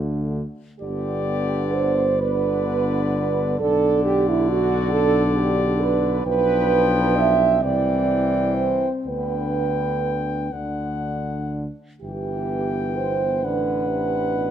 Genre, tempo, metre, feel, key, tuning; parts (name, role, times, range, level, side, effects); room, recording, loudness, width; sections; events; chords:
classical, hymn-like piece for brass band; 38-46 BPM (dotted quarters); 6/8; rubato; G major; A4 = 440 Hz
mellow French horn section; second line; 0.0-14.5 s; E4 to E5; -22 LUFS; right 6 dB
bright trombone; accompaniment; 0.0-14.5 s; B2 to F3; -29 LUFS; right 2 dB
warm euphonium; accompaniment; 0.0-14.5 s; A3 to D4; -29 LUFS; left 3 dB
dark tuba; bass; 0.0-14.5 s; G1 to D2; -26 LUFS; equal
clear flugelhorn; melody; 0.8-14.5 s; D5 to G5; -28 LUFS; left 9 dB
moderate recital hall reverb, RT60 1.4 s; close, detailed microphones; -19 LUFS; side -9 dB against mid
0.8-14.5 A section
0.0 D; 0.8 G; 3.6 Bm7; 6.3 G7/B; 7.6 C; 9.1 G/D; 10.5 D; 12.0 G